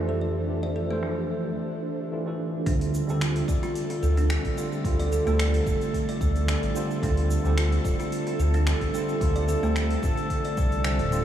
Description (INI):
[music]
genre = organic downtempo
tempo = 110 BPM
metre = 4/4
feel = swing 53% on 16ths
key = D minor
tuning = A4 = 440 Hz
[part]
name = tine electric piano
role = accompaniment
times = 0.0-11.2 s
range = D3 to C5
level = -30 LUFS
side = right 2 dB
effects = overdrive, medium stereo tremolo, sidechain pumping, analog delay
[part]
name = granular cloud pad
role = sustained chords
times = 0.0-11.2 s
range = D4 to E5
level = -36 LUFS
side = right 2 dB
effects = built-in reverb, lush chorus, sidechain pumping
[part]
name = smooth synth bass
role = bass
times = 0.0-11.2 s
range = D1 to F2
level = -25 LUFS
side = equal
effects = sidechain pumping
[part]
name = drifting glass-harmonics texture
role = texture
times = 0.0-11.2 s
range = A3 to A4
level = -37 LUFS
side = left 3 dB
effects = chorus, built-in reverb
[part]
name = kalimba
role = arpeggios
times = 0.1-11.2 s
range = A3 to D5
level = -31 LUFS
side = equal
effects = analog delay
[part]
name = deep house drum kit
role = drums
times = 0.1-11.2 s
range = cabasa, finger snaps, hi-hat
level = -36 LUFS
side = equal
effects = overdrive, low-pass filter on hats, low-pass filter on snare, low-pass filter on perc, low-pass filter on room
[part]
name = electronic kick drum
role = drums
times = 2.7-10.7 s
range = none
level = -28 LUFS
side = equal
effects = none
[sound]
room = moderate huge ambient reverb, RT60 7.9 s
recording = dreamy mix soaked in reverb, studio reverb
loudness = -23 LUFS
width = side -10 dB against mid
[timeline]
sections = 0.0-2.7 A section; 2.7-11.2 B section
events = break 1.6-2.7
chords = 0.0 F; 2.7 Dm7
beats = | 0.48 1.03 1.57 2.12 | 2.67 3.21 3.76 4.30 | 4.85 5.39 5.94 6.48 | 7.03 7.58 8.12 8.67 | 9.21 9.76 10.30 10.85